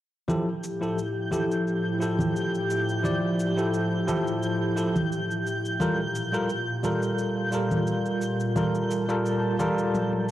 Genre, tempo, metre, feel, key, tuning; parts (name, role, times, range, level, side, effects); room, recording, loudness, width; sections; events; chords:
sunset chillout; 87 BPM; 4/4; swing 54% on 16ths; F major; A4 = 440 Hz
bell-like tine electric piano; accompaniment; 0.3-10.3 s; F3 to D5; -27 LUFS; equal; medium stereo tremolo, auto-pan, cassette tape, analog delay
airy breathy pad; sustained chords; 0.3-10.3 s; A2 to A5; -30 LUFS; equal; chorus, cassette tape
electronic shaker and toms; drums; 0.3-10.3 s; -38 LUFS; left 1 dB; studio reverb, cassette tape
congas; percussion; 0.3-9.7 s; -31 LUFS; right 1 dB
twinkling granular texture; texture; 0.9-10.3 s; G6; -34 LUFS; equal; built-in reverb, cassette tape
moderate lush hall reverb, RT60 1.9 s; home recording on cassette; -24 LUFS; side -13 dB against mid
0.3-10.3 A section
drum fill 9.9-10.3
0.3 Fmaj9; 5.8 Gm9